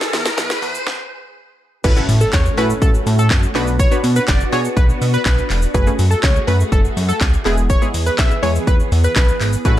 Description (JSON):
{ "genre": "dance-pop", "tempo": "123 BPM", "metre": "4/4", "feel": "straight", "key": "unclear", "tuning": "A4 = 440 Hz", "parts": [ { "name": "analog pluck", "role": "accompaniment", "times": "0.0-9.8 s", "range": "G#3 to B4", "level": "-22 LUFS", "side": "equal", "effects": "chorus, sidechain pumping" }, { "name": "soft string machine", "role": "sustained chords", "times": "0.0-9.8 s", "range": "E3 to G#4", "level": "-27 LUFS", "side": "equal", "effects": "phaser, ensemble chorus, sidechain pumping" }, { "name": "house drum kit", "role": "drums", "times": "0.0-9.8 s", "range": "crash cymbal, handclaps, hi-hat, kick drum, shaker, snare drum", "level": "-17 LUFS", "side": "equal", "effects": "none" }, { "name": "riser and impact", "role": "sound effects", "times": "0.0-3.8 s", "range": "none", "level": "-26 LUFS", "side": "equal", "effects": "none" }, { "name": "chorused synth bass", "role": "bass", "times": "0.1-9.8 s", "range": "E1 to B2", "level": "-17 LUFS", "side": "equal", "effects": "sidechain pumping" }, { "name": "plucky unison lead", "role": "melody", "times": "1.8-9.8 s", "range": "A4 to E5", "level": "-22 LUFS", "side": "equal", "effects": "tape echo" } ], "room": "little or no reverb", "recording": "dark, warm production, high-pass filter", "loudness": "-14 LUFS", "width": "side -13 dB against mid", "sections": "0.0-1.8 A section; 1.8-9.8 B section", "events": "build-up 0.0-1.8; drum fill 0.0-0.9; riser 0.0-1.8; filter sweep 0.0-1.8; stop 0.9-1.8; drop 1.8-9.8; impact 1.8-3.8", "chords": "0.0 E; 1.8 A6; 3.6 Bm; 5.7 F#madd9; 7.5 E" }